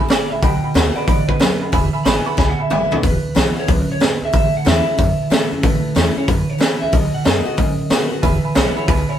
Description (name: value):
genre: rockabilly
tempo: 185 BPM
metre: 4/4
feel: swing 64% on 8ths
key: E major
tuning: A4 = 440 Hz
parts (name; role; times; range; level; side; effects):
- picked steel-string acoustic guitar; accompaniment; 0.0-9.2 s; E2 to F#4; -24 LUFS; left 3 dB; none
- warm upright piano; accompaniment; 0.0-3.0, 8.2-9.2 s; D#5 to C#6; -25 LUFS; right 2 dB; none
- electric guitar through a small old amp; melody; 0.1-9.2 s; B4 to B5; -24 LUFS; right 1 dB; none
- upright bass; bass; 0.1-9.1 s; E1 to B2; -22 LUFS; left 1 dB; none
- raw garage drum kit; drums; 0.1-9.0 s; hi-hat, kick drum, snare drum, toms; -16 LUFS; right 1 dB; none
room: little or no reverb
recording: band playing live in one room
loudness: -14 LUFS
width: side -10 dB against mid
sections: 0.0-3.0 A section; 3.0-9.2 B section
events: clean electric guitar solo 0.0-3.0; drum fill 2.4-3.0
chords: 0.4 B7; 1.7 E; 4.3 A; 6.9 B7; 8.2 E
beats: 0.10 | 0.43 0.75 1.08 1.41 | 1.73 2.06 2.38 2.71 | 3.03 3.36 3.68 4.01 | 4.33 4.66 4.98 5.31 | 5.63 5.96 6.28 6.61 | 6.93 7.26 7.58 7.91 | 8.23 8.56 8.88